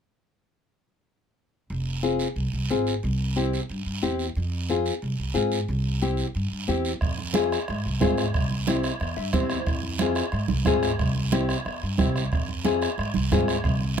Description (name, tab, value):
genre	latin, cumbia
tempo	181 BPM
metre	4/4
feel	straight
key	F harmonic minor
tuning	A4 = 440 Hz
part	upright bass	bass	1.7-14.0 s	F1 to Ab2	-28 LUFS	right 1 dB	none
part	guiro	percussion	1.7-14.0 s	none	-36 LUFS	right 6 dB	none
part	nylon-string guitar	accompaniment	2.0-14.0 s	C4 to E5	-25 LUFS	left 4 dB	none
part	bombo	percussion	7.0-14.0 s	none	-28 LUFS	right 2 dB	none
part	congas	percussion	7.2-14.0 s	none	-29 LUFS	right 7 dB	none
room	little or no reverb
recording	close, detailed microphones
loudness	-23 LUFS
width	side -8 dB against mid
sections	1.7-7.0 A section; 7.0-14.0 B section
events	nylon-string guitar fill 9.0-9.7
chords	1.7 Fm; 3.0 C; 4.4 Fm; 5.7 C; 7.0 Fm; 8.3 C; 9.7 Fm; 11.0 C; 12.3 Fm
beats	| 1.70 2.04 2.37 2.70 | 3.03 3.36 3.70 4.03 | 4.36 4.69 5.03 5.36 | 5.69 6.02 6.35 6.68 | 7.02 7.35 7.68 8.01 | 8.34 8.68 9.01 9.34 | 9.67 10.00 10.33 10.67 | 11.00 11.33 11.66 11.99 | 12.32 12.65 12.99 13.32 | 13.65 13.98